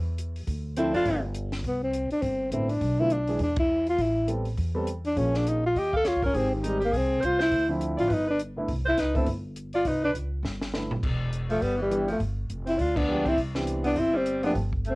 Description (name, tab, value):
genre	jazz, small-group swing and bop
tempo	204 BPM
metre	4/4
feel	swing 60% on 8ths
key	C major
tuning	A4 = 441 Hz
part	upright bass	bass	0.0-15.0 s	E1 to E2	-30 LUFS	equal	none
part	compact cocktail drum kit	drums	0.2-14.9 s	crash cymbal, hi-hat, kick drum, ride cymbal, snare drum, toms	-34 LUFS	equal	cassette tape
part	breathy tenor saxophone	melody	0.8-15.0 s	Eb3 to A4	-25 LUFS	left 1 dB	cassette tape
part	growling alto saxophone	second line	0.8-1.2, 5.8-15.0 s	E3 to F5	-32 LUFS	right 1 dB	cassette tape
part	dark grand piano	accompaniment	0.8-14.5 s	D3 to A4	-31 LUFS	right 1 dB	cassette tape
room	light reverb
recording	home recording on cassette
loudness	-24 LUFS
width	side -24 dB against mid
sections	0.0-1.6 A section; 1.6-11.0 B section; 11.0-15.0 C section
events	band accent 3.6, 12.9; drum fill 10.4-11.0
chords	0.5 Dm9; 1.1 G5; 1.6 Cmaj13; 2.8 Bm7b5; 3.4 Dsus2/E; 4.0 Am9; 5.2 Bbm7; 5.8 Eb7; 6.3 Abmaj7; 7.5 Dm9; 8.1 Gadd9; 8.7 C5; 11.0 Em7; 12.2 G7b9; 13.4 Cmaj9